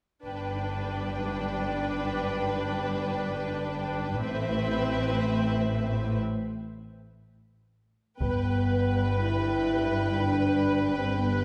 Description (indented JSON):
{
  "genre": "cinematic, epic orchestral film score",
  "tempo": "free time",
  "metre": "none",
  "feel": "none",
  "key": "unclear",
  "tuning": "A4 = 440 Hz",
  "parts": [
    { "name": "warm symphonic violin section", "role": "second line", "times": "0.2-11.4 s", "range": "B4", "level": "-38 LUFS", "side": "equal", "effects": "none" },
    { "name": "warm symphonic violin section", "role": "melody", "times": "0.3-11.4 s", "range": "E5 to G5", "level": "-40 LUFS", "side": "equal", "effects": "none" },
    { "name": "rich symphonic viola section", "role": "accompaniment", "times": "0.3-11.4 s", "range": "C4 to B4", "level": "-36 LUFS", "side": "equal", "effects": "none" },
    { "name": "warm studio double bass section", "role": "bass", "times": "0.3-11.4 s", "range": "G1 to A1", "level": "-35 LUFS", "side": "equal", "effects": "none" },
    { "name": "warm symphonic cello section", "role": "bass", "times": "0.3-11.4 s", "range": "G2 to A2", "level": "-35 LUFS", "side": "equal", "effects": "none" },
    { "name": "dark French horn section", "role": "sustained chords", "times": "8.2-11.4 s", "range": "B3 to E4", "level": "-30 LUFS", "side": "equal", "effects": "none" },
    { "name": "taiko ensemble", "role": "drums", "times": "8.2-9.2 s", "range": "none", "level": "-36 LUFS", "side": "equal", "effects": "none" }
  ],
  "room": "moderate scoring stage reverb, RT60 2.0 s",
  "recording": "none",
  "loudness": "-28 LUFS",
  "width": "mono",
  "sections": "0.3-8.2 A section; 8.2-11.4 B section",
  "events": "break 6.2-8.2",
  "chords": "0.3 G; 4.2 Amadd9; 8.2 G"
}